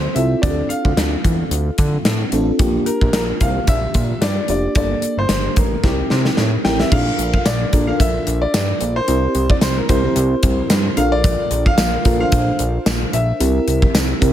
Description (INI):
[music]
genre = 1980s-style pop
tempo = 111 BPM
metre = 4/4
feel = swing 55% on 16ths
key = unclear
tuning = A4 = 441 Hz
[part]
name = warm concert grand piano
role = melody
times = 0.0-14.3 s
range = G4 to G5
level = -23 LUFS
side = left 2 dB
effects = digital delay
[part]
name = FM electric piano with soft pad layer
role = accompaniment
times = 0.0-14.3 s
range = Bb3 to C5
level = -22 LUFS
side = right 1 dB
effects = chorus
[part]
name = fat analog bass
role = bass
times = 0.0-14.3 s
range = F1 to D3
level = -20 LUFS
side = equal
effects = none
[part]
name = gated 80s drum kit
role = drums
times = 0.2-14.3 s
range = crash cymbal, hi-hat, kick drum, snare drum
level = -18 LUFS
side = equal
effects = none
[part]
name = tambourine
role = percussion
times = 7.5-14.1 s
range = none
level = -32 LUFS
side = right 8 dB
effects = none
[sound]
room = light reverb, small room ambience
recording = none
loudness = -15 LUFS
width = side -11 dB against mid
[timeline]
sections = 0.0-6.9 A section; 6.9-14.3 B section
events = drum fill 5.8-6.9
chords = 0.4 Dm7; 2.6 Bb6; 4.8 Gmadd9; 5.8 C7; 6.9 Bbmaj7; 9.1 C7; 11.0 Bbmaj7; 13.4 C7